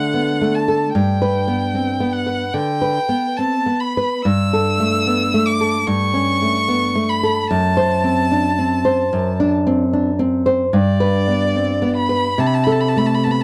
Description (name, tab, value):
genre	romantic duo for violin and classical guitar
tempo	74 BPM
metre	4/4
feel	rubato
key	G major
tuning	A4 = 440 Hz
part	rich violin	melody	0.0-13.4 s	D5 to E6	-23 LUFS	equal	none
part	nylon-string guitar	accompaniment	0.0-13.4 s	F#2 to C5	-19 LUFS	equal	none
room	light reverb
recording	dry, close 1970s-style studio recording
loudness	-18 LUFS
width	mono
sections	0.0-13.4 A section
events	none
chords	0.0 D; 1.0 G; 4.2 A7/G; 7.5 D7/F#; 10.8 G; 12.4 Am/C